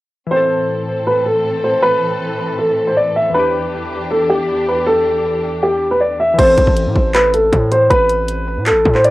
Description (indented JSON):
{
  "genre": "hip hop, trap",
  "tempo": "158 BPM",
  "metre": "4/4",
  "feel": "half-time",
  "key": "A minor",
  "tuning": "A4 = 441 Hz",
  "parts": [
    { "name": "dark baby grand piano", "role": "melody", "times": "0.3-9.1 s", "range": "G4 to E5", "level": "-14 LUFS", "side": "equal", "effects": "low-pass filter, tape echo" },
    { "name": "glassy digital keys", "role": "accompaniment", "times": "0.3-9.1 s", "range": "E3 to A4", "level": "-27 LUFS", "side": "left 5 dB", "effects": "chorus, low-pass filter, cassette tape, plate reverb" },
    { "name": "muted studio string section", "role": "sustained chords", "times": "0.3-6.4 s", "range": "E2 to A4", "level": "-23 LUFS", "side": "equal", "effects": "cassette tape" },
    { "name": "distorted 808-style bass", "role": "bass", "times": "6.4-9.1 s", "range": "A1 to A2", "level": "-18 LUFS", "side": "equal", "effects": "distortion" },
    { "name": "trap drum kit", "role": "drums", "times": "6.4-9.1 s", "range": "crash cymbal, handclaps, hi-hat, kick drum", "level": "-18 LUFS", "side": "equal", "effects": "cassette tape" }
  ],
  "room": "moderate studio reverb, RT60 0.5 s",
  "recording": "home recording on cassette",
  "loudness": "-13 LUFS",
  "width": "side -18 dB against mid",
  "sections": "0.3-6.4 A section; 6.4-9.1 B section",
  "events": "none",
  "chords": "0.3 Am; 3.3 Em7; 6.4 Am"
}